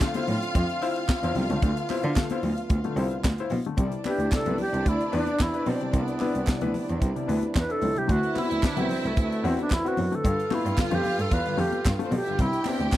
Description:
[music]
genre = disco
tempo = 111 BPM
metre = 4/4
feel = straight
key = unclear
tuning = A4 = 440 Hz
[part]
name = rich studio string section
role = second line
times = 0.0-13.0 s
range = C4 to G5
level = -33 LUFS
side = equal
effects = none
[part]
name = warm concert grand piano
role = accompaniment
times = 0.0-13.0 s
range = G2 to C5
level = -32 LUFS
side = left 6 dB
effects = none
[part]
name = mellow French horn section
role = sustained chords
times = 0.0-13.0 s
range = B2 to B4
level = -34 LUFS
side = right 2 dB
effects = stereo widening
[part]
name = tight funk drum kit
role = drums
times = 0.0-13.0 s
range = handclaps, hi-hat, kick drum, snare drum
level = -25 LUFS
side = equal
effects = none
[part]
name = congas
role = percussion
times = 0.0-12.8 s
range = none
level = -35 LUFS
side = left 4 dB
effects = none
[part]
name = group handclap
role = percussion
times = 0.0-13.0 s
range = none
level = -41 LUFS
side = right 7 dB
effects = none
[part]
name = rich cello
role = bass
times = 0.3-12.9 s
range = C2 to D3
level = -29 LUFS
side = equal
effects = none
[part]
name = alto flute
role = melody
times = 4.1-13.0 s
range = A3 to B4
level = -29 LUFS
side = right 1 dB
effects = tape echo
[sound]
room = little or no reverb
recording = dry, close 1970s-style studio recording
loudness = -23 LUFS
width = side -14 dB against mid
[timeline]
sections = 0.0-3.8 A section; 3.8-13.0 B section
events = alto flute solo 3.8-13.0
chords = 0.0 Dm7; 3.8 Cmaj9; 8.1 D13; 10.2 G9; 12.4 Cmaj9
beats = 0.01 0.55 1.09 | 1.63 2.17 2.71 3.24 | 3.78 4.32 4.86 5.40 | 5.94 6.48 7.01 7.55 | 8.09 8.63 9.17 9.71 | 10.24 10.78 11.32 11.86 | 12.39 12.93

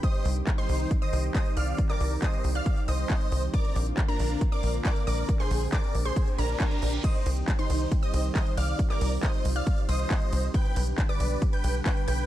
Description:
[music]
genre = uplifting trance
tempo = 137 BPM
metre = 4/4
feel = straight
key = C minor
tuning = A4 = 440 Hz
[part]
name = big supersaw lead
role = melody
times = 0.0-12.3 s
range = D4 to G5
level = -33 LUFS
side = equal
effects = sidechain pumping, tape echo
[part]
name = wide unison pluck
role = second line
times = 0.0-12.3 s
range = Bb5 to G6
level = -40 LUFS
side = right 1 dB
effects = sidechain pumping, tape echo
[part]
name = lush unison pad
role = sustained chords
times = 0.0-12.3 s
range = D3 to G4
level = -36 LUFS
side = right 1 dB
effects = chorus, sidechain pumping
[part]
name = electronic kick drum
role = drums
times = 0.0-11.9 s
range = none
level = -26 LUFS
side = equal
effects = overdrive
[part]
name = techno drum kit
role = drums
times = 0.0-12.3 s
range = crash cymbal, handclaps, hi-hat, ride cymbal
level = -37 LUFS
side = equal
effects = overdrive
[part]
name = tight sequencer bass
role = bass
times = 0.3-12.2 s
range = Bb1 to C2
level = -27 LUFS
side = equal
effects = sidechain pumping
[part]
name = reverse cymbal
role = sound effects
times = 6.4-7.0 s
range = none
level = -40 LUFS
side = right 3 dB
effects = none
[sound]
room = little or no reverb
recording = dark, warm production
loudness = -24 LUFS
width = side -13 dB against mid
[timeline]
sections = 0.0-12.3 A section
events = reverse cymbal 6.4-7.0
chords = 0.0 Cm; 3.5 Bbadd9; 7.0 Cm; 10.5 G/B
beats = | 0.03 0.47 0.91 1.35 | 1.78 2.22 2.66 3.10 | 3.54 3.98 4.41 4.85 | 5.29 5.73 6.17 6.60 | 7.04 7.48 7.92 8.35 | 8.79 9.23 9.67 10.11 | 10.54 10.98 11.42 11.86

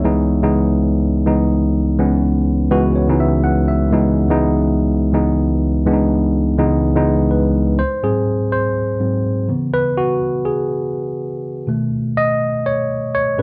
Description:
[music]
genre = disco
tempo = 124 BPM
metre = 4/4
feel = swing 56% on 16ths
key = unclear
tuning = A4 = 440 Hz
[part]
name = tine electric piano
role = solo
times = 0.0-13.4 s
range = C#2 to F#5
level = -17 LUFS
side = equal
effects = none
[sound]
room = moderate large studio reverb, RT60 1.3 s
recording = none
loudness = -17 LUFS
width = mono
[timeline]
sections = 0.0-7.8 A section; 7.8-13.4 B section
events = tine electric piano fill 2.5-3.9, 7.1-7.8; tine electric piano solo 7.8-13.4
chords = 0.0 C#m7; 7.8 G#7; 9.5 C#m7; 11.7 B9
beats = | 0.04 0.53 1.02 1.50 | 1.99 2.47 2.96 3.44 | 3.92 4.41 4.89 5.37 | 5.86 6.34 6.83 7.31 | 7.80 8.28 8.77 9.25 | 9.74 10.22 10.71 11.20 | 11.68 12.17 12.65 13.14

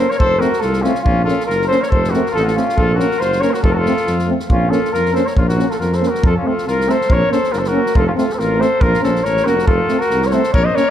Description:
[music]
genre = balkan folk, Balkan brass band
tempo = 139 BPM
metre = 2/4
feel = swing 55% on 16ths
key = Bb harmonic minor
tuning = A4 = 440 Hz
[part]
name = mellow cornet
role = melody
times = 0.0-10.9 s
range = F4 to Eb5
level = -18 LUFS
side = equal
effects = none
[part]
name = bright trumpet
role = second line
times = 0.0-10.9 s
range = Db4 to C5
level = -24 LUFS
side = left 3 dB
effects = none
[part]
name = mellow French horn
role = accompaniment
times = 0.0-10.8 s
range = C4 to Db4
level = -23 LUFS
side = left 4 dB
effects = none
[part]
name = warm euphonium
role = accompaniment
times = 0.0-10.8 s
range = A3 to Bb3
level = -24 LUFS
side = right 5 dB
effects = none
[part]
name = natural country drum kit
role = percussion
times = 0.1-10.8 s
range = kick drum, snare drum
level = -21 LUFS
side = equal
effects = none
[part]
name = mellow tuba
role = bass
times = 0.2-10.7 s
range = F1 to F2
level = -20 LUFS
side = equal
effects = none
[sound]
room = moderate concert hall reverb, RT60 1.8 s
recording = dark, warm production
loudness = -13 LUFS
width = side -10 dB against mid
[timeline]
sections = 0.0-6.2 A section; 6.2-10.9 B section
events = none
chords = 0.2 F; 1.1 Bbm; 1.9 F; 2.8 Bbm; 3.6 F; 4.5 Bbm; 6.2 F; 7.1 Bbm; 8.0 F; 8.8 Bbm; 9.7 F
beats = | 0.20 0.63 | 1.06 1.49 | 1.92 2.35 | 2.78 3.21 | 3.64 4.07 | 4.50 4.93 | 5.37 5.80 | 6.23 6.66 | 7.09 7.52 | 7.95 8.38 | 8.81 9.24 | 9.68 10.11 | 10.54

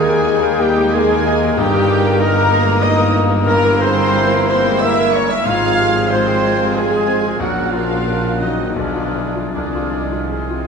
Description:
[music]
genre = classical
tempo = 74-96 BPM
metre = 3/4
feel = rubato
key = F minor from 3.5 s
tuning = A4 = 443 Hz
[part]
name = clear grand piano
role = melody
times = 0.0-10.7 s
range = Bb1 to C5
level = -19 LUFS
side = left 2 dB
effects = none
[part]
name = rich studio violin section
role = melody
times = 0.0-10.7 s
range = C5 to F6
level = -26 LUFS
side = left 2 dB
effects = none
[part]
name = flute section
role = second line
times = 0.0-10.7 s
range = Bb5 to Ab6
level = -27 LUFS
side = right 3 dB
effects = none
[part]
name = mellow clarinet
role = second line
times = 0.0-10.7 s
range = C4 to F5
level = -24 LUFS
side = equal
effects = none
[part]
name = mellow oboe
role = second line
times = 0.0-10.7 s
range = Eb4 to Bb4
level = -28 LUFS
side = right 2 dB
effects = none
[part]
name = rich studio violin section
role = second line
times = 0.0-10.7 s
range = G3 to F4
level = -29 LUFS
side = left 4 dB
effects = none
[part]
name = rich studio viola section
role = accompaniment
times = 0.0-10.7 s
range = C4 to F5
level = -23 LUFS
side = equal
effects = none
[part]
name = warm French horn section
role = sustained chords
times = 0.0-10.7 s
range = C3 to F4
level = -23 LUFS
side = left 3 dB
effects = none
[part]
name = warm trombone section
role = sustained chords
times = 0.0-10.7 s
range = Db3 to Bb3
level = -26 LUFS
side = right 1 dB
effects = none
[part]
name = warm trumpet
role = stabs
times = 0.0-10.7 s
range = C4 to F5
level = -24 LUFS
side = right 2 dB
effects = none
[part]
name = mellow tuba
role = bass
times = 0.0-10.7 s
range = G1 to Eb2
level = -26 LUFS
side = right 4 dB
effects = none
[part]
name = warm studio cello section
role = bass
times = 0.0-10.7 s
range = Eb2 to C3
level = -25 LUFS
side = right 2 dB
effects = none
[part]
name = warm studio double bass section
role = bass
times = 0.0-10.7 s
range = G1 to Eb2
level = -26 LUFS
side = right 3 dB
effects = none
[sound]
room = wet scoring stage reverb, RT60 1.6 s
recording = minimal, uncompressed stereo recording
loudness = -13 LUFS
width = side -6 dB against mid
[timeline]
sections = 0.0-10.7 A section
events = none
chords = 0.0 Eb; 1.6 Eb/G; 3.5 C7/G; 5.5 Fm/Ab; 7.4 Gb/Bb; 8.8 Bdim7; 9.5 Fm/C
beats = 0.27 0.94 | 1.57 2.20 2.83 | 3.47 4.15 4.82 | 5.46 6.10 6.75 | 7.40 8.06 8.76 | 9.53 10.32

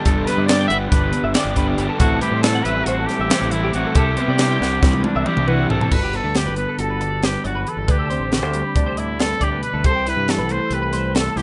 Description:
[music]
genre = math rock and midwest emo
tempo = 276 BPM (eighths)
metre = 9/8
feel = straight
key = G major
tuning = A4 = 440 Hz
[part]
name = mellow electric guitar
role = accompaniment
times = 0.0-11.4 s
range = D2 to G4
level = -28 LUFS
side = equal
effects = analog chorus
[part]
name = twelve-string electric guitar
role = arpeggios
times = 0.0-11.4 s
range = G4 to G5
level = -30 LUFS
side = equal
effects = ensemble chorus, analog delay
[part]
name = crunchy overdriven guitar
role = riff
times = 0.0-5.9 s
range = G2 to G4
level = -26 LUFS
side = equal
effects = none
[part]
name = clear trumpet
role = melody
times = 0.1-11.4 s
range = D4 to E5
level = -26 LUFS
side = equal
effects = none
[part]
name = growling fingered electric bass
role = bass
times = 0.1-11.4 s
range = G1 to C3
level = -27 LUFS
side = equal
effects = overdrive
[part]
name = crisp fusion drum kit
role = drums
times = 0.1-11.4 s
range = crash cymbal, hi-hat, kick drum, snare drum, toms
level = -22 LUFS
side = equal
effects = none
[sound]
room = light reverb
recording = rough home demo mix, nothing above 11.0 kHz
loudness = -19 LUFS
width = mono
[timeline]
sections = 0.0-5.9 A section; 5.9-11.4 B section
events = drum fill 4.6-5.9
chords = 0.0 G; 2.0 Am7; 4.0 Cmaj9; 5.9 Gmaj7; 7.9 D7sus4; 9.8 C6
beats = | 0.06 0.28 0.49 0.71 0.93 1.14 1.36 1.57 1.79 | 2.01 2.23 2.44 2.66 2.88 3.09 3.31 3.53 3.75 | 3.96 4.18 4.40 4.61 4.83 5.05 5.27 5.49 5.70 | 5.92 6.14 6.36 6.57 6.79 7.01 7.23 7.45 7.66 | 7.88 8.10 8.32 8.54 8.76 8.97 9.19 9.41 9.63 | 9.85 10.06 10.28 10.50 10.72 10.94 11.15 11.37

